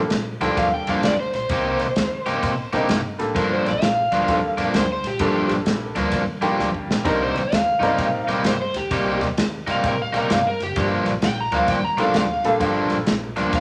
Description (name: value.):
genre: electric blues shuffle.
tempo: 130 BPM.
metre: 4/4.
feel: swing 64% on 8ths.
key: G minor.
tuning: A4 = 440 Hz.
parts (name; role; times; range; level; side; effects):
bright upright piano; accompaniment; 0.0-8.4, 12.0-13.0 s; G3 to D5; -28 LUFS; equal; none.
upright bass; bass; 0.0-13.6 s; F#1 to Bb2; -36 LUFS; equal; none.
natural country drum kit; drums; 0.1-13.6 s; kick drum, ride cymbal, snare drum; -28 LUFS; equal; none.
overdriven slide guitar; second line; 0.4-13.6 s; G4 to Bb5; -26 LUFS; equal; none.
overdriven semi-hollow guitar; riff; 0.4-13.6 s; G2 to G4; -25 LUFS; equal; none.
room: moderate large studio reverb, RT60 1.0 s.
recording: none.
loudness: -21 LUFS.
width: mono.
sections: 0.0-13.6 A section.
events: electric slide guitar solo 0.0-13.6; drum fill 6.6-7.1.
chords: 0.0 Gm7; 1.5 Cm7; 3.4 Gm7; 7.1 Cm7; 10.8 Gm7.